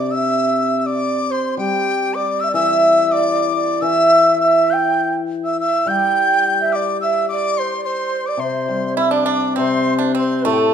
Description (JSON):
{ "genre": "chinese traditional, Chinese chamber ensemble", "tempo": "99-110 BPM", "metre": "2/4", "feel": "rubato", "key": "C gong mode", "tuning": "A4 = 440 Hz", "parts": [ { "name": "mellow low xiao", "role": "melody", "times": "0.0-10.7 s", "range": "G4 to G5", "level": "-19 LUFS", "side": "right 6 dB", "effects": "none" }, { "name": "dizi", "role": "second line", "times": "0.0-10.7 s", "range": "G5 to G6", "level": "-20 LUFS", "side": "left 3 dB", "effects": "none" }, { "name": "hammered dulcimer", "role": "accompaniment", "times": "0.0-10.7 s", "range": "A2 to C4", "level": "-20 LUFS", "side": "left 5 dB", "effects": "none" }, { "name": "pipa", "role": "second line", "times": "9.0-10.7 s", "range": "A3 to E4", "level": "-20 LUFS", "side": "right 6 dB", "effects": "none" } ], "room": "moderate recital hall reverb, RT60 1.4 s", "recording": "minimal, uncompressed stereo recording", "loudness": "-15 LUFS", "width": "side -8 dB against mid", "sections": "0.4-9.6 A section; 9.6-10.7 B section", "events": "none", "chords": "none", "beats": "| 0.41 1.01 | 1.58 2.14 | 2.70 3.26 | 3.83 4.41 | 4.99 5.58 | 6.15 6.71 | 7.27 7.82 | 8.38 8.97 | 9.57 10.16 | 10.74" }